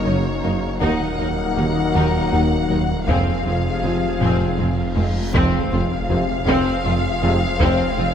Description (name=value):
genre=cinematic, hybrid orchestral and electronic film score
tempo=53 BPM (dotted quarters)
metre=6/8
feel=straight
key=F phrygian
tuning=A4 = 441 Hz
part: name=warm symphonic violin section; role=melody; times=0.0-8.1 s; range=Db5 to Gb5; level=-26 LUFS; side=left 5 dB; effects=none
part: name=warm symphonic violin section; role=second line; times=0.0-8.1 s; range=C4 to Bb4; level=-29 LUFS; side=left 4 dB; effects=none
part: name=rich studio viola section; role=accompaniment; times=0.0-8.1 s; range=C4 to Eb4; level=-28 LUFS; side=equal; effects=none
part: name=mellow French horn section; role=sustained chords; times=0.0-7.4 s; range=Ab3 to F4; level=-29 LUFS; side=left 6 dB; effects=none
part: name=phased analog pad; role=sustained chords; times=0.0-8.1 s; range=F3 to Bb4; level=-28 LUFS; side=left 1 dB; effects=phaser, chorus
part: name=warm trombone section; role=sustained chords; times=0.0-7.4 s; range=C3 to Gb3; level=-28 LUFS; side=right 1 dB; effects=none
part: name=detuned saw bass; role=bass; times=0.0-8.1 s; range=Eb1 to Gb1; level=-28 LUFS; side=equal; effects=none
part: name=glassy wavetable pluck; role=arpeggios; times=0.1-8.1 s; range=Eb3 to F4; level=-30 LUFS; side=equal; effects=none
part: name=smooth gliding synth bass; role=riff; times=0.1-8.1 s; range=Eb2 to F3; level=-25 LUFS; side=right 2 dB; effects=none
part: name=mellow tuba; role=bass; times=0.1-8.1 s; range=F1 to Eb2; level=-28 LUFS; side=right 3 dB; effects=none
part: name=rich symphonic cello section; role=bass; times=0.1-8.1 s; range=Eb2 to Gb2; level=-29 LUFS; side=right 2 dB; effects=none
part: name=warm symphonic double bass section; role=bass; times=0.1-8.1 s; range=F1 to Eb2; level=-29 LUFS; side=right 2 dB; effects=none
part: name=taiko ensemble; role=drums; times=0.8-8.1 s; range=none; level=-26 LUFS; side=left 1 dB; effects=none
part: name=reverse cymbal and impact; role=sound effects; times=5.0-7.6 s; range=none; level=-31 LUFS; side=equal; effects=none
room=moderate scoring stage reverb, RT60 1.7 s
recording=none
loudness=-17 LUFS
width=side -8 dB against mid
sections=0.0-5.3 A section; 5.3-8.1 B section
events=drum fill 4.2-5.3; reverse cymbal 5.0-5.3; impact 5.3-7.6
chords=0.0 Gb6; 0.8 Ebm; 3.1 Fm